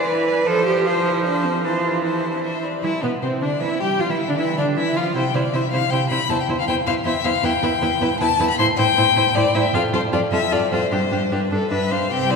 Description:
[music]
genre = quick classical-period movement for string quartet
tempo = 155 BPM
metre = 3/4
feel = straight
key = unclear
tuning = A4 = 437 Hz
[part]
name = rich violin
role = melody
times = 0.0-12.4 s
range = B4 to C6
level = -22 LUFS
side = left 6 dB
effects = none
[part]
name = rich violin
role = second line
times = 0.0-12.4 s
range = B3 to E5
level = -26 LUFS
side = left 2 dB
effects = none
[part]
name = clear viola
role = accompaniment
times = 0.0-12.4 s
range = E3 to G4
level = -24 LUFS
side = right 3 dB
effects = none
[part]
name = rich cello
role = bass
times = 0.0-12.4 s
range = C2 to B4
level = -23 LUFS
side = right 3 dB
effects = none
[sound]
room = wet cathedral reverb, RT60 6.6 s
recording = recorded in a church or concert hall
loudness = -17 LUFS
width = side -4 dB against mid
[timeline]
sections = 0.0-2.8 A section; 2.8-12.1 B section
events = none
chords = 0.5 F; 1.6 Am/E; 2.4 Cadd9/E; 2.8 Cmaj9/B; 4.0 Dmadd9; 5.2 C; 6.3 C/E; 8.6 Am; 9.7 F; 10.9 G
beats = 0.08 | 0.47 0.85 1.25 | 1.64 2.05 2.44 | 2.84 3.22 3.61 | 4.00 4.38 4.77 | 5.16 5.54 5.92 | 6.30 6.68 7.06 | 7.44 7.82 8.20 | 8.59 8.97 9.35 | 9.74 10.12 10.52 | 10.92 11.32 11.71 | 12.11

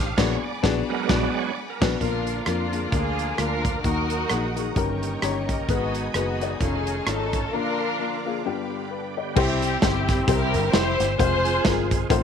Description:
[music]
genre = uptempo gospel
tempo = 131 BPM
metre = 4/4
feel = swing 58% on 8ths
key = unclear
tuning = A4 = 440 Hz
[part]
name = warm upright piano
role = accompaniment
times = 0.0-12.2 s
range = G2 to Bb5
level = -27 LUFS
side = left 11 dB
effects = none
[part]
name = bright studio string section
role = sustained chords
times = 0.0-9.4 s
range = D5 to Eb6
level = -37 LUFS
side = left 2 dB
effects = none
[part]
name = bright tonewheel organ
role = sustained chords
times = 0.0-12.2 s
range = D3 to F5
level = -32 LUFS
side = right 12 dB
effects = slow rotary speaker, overdrive, chorus vibrato
[part]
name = fingered electric bass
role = bass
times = 0.0-12.2 s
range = F1 to F2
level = -28 LUFS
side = right 2 dB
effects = none
[part]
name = modern studio drum kit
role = drums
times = 0.2-12.2 s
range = crash cymbal, hi-hat, kick drum, rim click, snare drum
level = -25 LUFS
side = right 2 dB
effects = none
[part]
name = warm studio string section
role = melody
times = 2.0-12.1 s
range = Bb3 to C5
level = -26 LUFS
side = left 1 dB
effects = none
[sound]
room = light reverb, small room reverb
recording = 1960s-style stereo with parts hard left and right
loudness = -21 LUFS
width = side -7 dB against mid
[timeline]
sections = 0.0-2.0 A section; 2.0-9.4 B section; 9.4-12.2 C section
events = tonewheel organ solo 0.0-2.0; band accent 0.2-2.0; upright piano fill 5.0-5.7; break 7.5-9.4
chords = 0.2 Bb7b9b13; 2.0 Bb; 3.8 Ebm; 4.8 Eb7/G; 5.7 Abm; 6.6 F7alt; 7.5 Bb; 8.4 G7; 9.4 C; 11.2 Fm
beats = | 0.18 0.64 1.09 1.55 | 2.01 2.47 2.93 3.39 | 3.85 4.31 4.77 5.23 | 5.69 6.15 6.61 7.07 | 7.53 7.99 8.45 8.91 | 9.37 9.82 10.28 10.74 | 11.19 11.65 12.10

